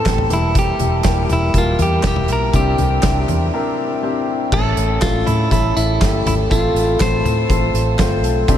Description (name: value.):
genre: piano-driven pop.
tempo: 121 BPM.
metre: 4/4.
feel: straight.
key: unclear.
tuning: A4 = 440 Hz.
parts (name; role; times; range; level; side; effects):
clean electric guitar; melody; 0.0-8.0 s; E4 to C5; -21 LUFS; equal; analog delay.
warm concert grand piano; accompaniment; 0.0-8.6 s; A2 to A5; -20 LUFS; left 2 dB; none.
vintage muted fingered electric bass; bass; 0.1-8.6 s; E1 to A2; -19 LUFS; equal; none.
loose indie drum kit; drums; 0.1-8.6 s; crash cymbal, handclaps, hi-hat, kick drum, snare drum, toms; -20 LUFS; equal; none.
room: moderate huge ambient reverb, RT60 8.4 s.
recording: dreamy mix soaked in reverb.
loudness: -14 LUFS.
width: side -10 dB against mid.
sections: 0.0-4.5 A section; 4.5-8.6 B section.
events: break 3.5-4.5; grand piano fill 7.7-8.5.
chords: 0.3 Edim; 2.5 Cadd9; 4.5 A; 6.5 F/A.